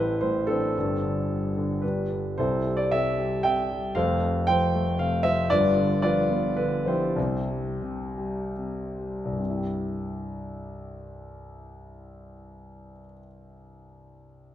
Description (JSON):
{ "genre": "classical, lyrical solo piano", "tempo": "66-117 BPM", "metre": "3/4", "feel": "rubato", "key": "C major", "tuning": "A4 = 438 Hz", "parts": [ { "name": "warm concert grand piano", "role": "solo", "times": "0.0-14.5 s", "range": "F1 to G5", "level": "-24 LUFS", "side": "equal", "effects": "none" } ], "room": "wet recital hall reverb, RT60 1.5 s", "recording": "minimal, uncompressed stereo recording", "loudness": "-24 LUFS", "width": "side -11 dB against mid", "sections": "0.0-9.4 A section; 9.4-14.5 B section", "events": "slowing down 5.5-9.4", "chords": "0.0 Am7; 0.8 Gsus4; 1.8 G; 2.4 C6; 4.0 Fadd9; 5.5 G7; 7.2 C" }